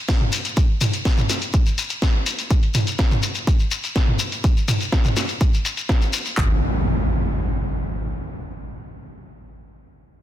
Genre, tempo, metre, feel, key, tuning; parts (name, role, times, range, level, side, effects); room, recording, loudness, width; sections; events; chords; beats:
melodic techno; 124 BPM; 4/4; straight; A4 = 436 Hz
house drum kit; drums; 0.1-6.5 s; handclaps, kick drum; -18 LUFS; equal
house drum kit; drums; 0.1-6.4 s; hi-hat, snare drum, toms; -23 LUFS; equal; low-pass filter on hats, low-pass filter on snare, low-pass filter on toms, low-pass filter on room
shekere; percussion; 0.1-6.3 s; -26 LUFS; left 4 dB
round analog bass; bass; 6.4-6.6 s; G#1; -22 LUFS; equal; sidechain pumping
impact; sound effects; 6.4-8.3 s; -23 LUFS; equal
light reverb, digital ambience; dense, heavily limited modern master; -18 LUFS; side -12 dB against mid
0.0-6.4 A section; 6.4-8.3 B section
0.09 | 0.57 1.05 1.54 2.02 | 2.50 2.99 3.47 3.96 | 4.44 4.92 5.41 5.89 | 6.38 6.86 7.34 7.83